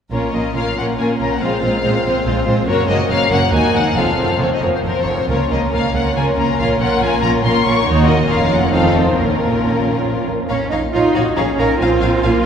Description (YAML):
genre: quick classical-period movement for string orchestra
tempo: 138 BPM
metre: 3/4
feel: rubato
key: Bb minor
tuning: A4 = 440 Hz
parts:
  - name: rich studio violin section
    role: melody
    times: 0.1-12.5 s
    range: A4 to Db6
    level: -22 LUFS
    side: left 5 dB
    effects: none
  - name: warm studio violin section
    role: second line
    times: 0.1-12.3 s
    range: F4 to F5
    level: -21 LUFS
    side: left 3 dB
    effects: none
  - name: warm studio viola section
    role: accompaniment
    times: 0.1-12.5 s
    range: F3 to Eb4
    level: -19 LUFS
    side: right 1 dB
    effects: none
  - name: warm studio cello section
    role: bass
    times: 0.1-12.5 s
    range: Eb2 to Bb4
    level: -21 LUFS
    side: right 2 dB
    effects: none
  - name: warm studio double bass section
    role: bass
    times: 0.1-12.3 s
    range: F1 to Eb2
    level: -22 LUFS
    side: right 2 dB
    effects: none
room: wet cathedral reverb, RT60 6.3 s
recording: recorded in a church or concert hall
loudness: -14 LUFS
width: side -7 dB against mid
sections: 0.1-10.5 A section; 10.5-12.5 A section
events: none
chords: 0.1 Bbm; 1.4 Fm/Bb; 2.7 Gb; 3.5 Ebm; 4.0 F; 5.3 Bbm/Db; 6.6 Bbm; 7.9 Ebm; 8.3 Bbm/F; 8.7 F7; 9.2 Bbm; 11.8 Fm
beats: | 0.11 0.55 0.98 | 1.41 1.83 2.25 | 2.67 3.10 3.52 | 3.96 4.40 4.84 | 5.28 5.72 6.15 | 6.58 7.01 7.44 | 7.87 8.29 8.72 | 9.16 9.61 10.05 | 10.50 10.94 11.37 | 11.81 12.24